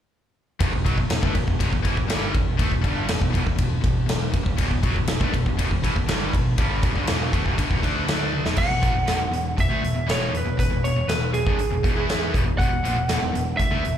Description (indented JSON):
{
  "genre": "hard rock",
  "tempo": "120 BPM",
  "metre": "4/4",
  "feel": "straight",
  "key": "unclear",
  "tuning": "A4 = 440 Hz",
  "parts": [
    { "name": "cranked stack guitar", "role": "riff", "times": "0.6-14.0 s", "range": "E2 to E4", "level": "-28 LUFS", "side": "left 10 dB", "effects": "overdrive, slapback echo" },
    { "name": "distorted electric guitar", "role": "riff", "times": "0.6-14.0 s", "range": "E2 to E4", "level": "-29 LUFS", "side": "right 8 dB", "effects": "distortion, slapback echo" },
    { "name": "growling picked electric bass", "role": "bass", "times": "0.6-14.0 s", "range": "E1 to E2", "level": "-26 LUFS", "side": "equal", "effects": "overdrive" },
    { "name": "huge arena drum kit", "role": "drums", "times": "0.6-14.0 s", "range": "crash cymbal, hi-hat, kick drum, ride cymbal, snare drum, toms", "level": "-24 LUFS", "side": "equal", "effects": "none" },
    { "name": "lightly driven lead guitar", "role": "melody", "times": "8.6-14.0 s", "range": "G#4 to F#5", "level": "-26 LUFS", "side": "right 2 dB", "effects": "plate reverb, slapback echo, tape echo" }
  ],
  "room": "light reverb",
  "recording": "live gig heard through the venue's PA, club reverb",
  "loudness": "-20 LUFS",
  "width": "side -10 dB against mid",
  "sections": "0.6-8.6 A section; 8.6-14.0 B section",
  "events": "drum fill 8.3",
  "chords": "0.6 E5"
}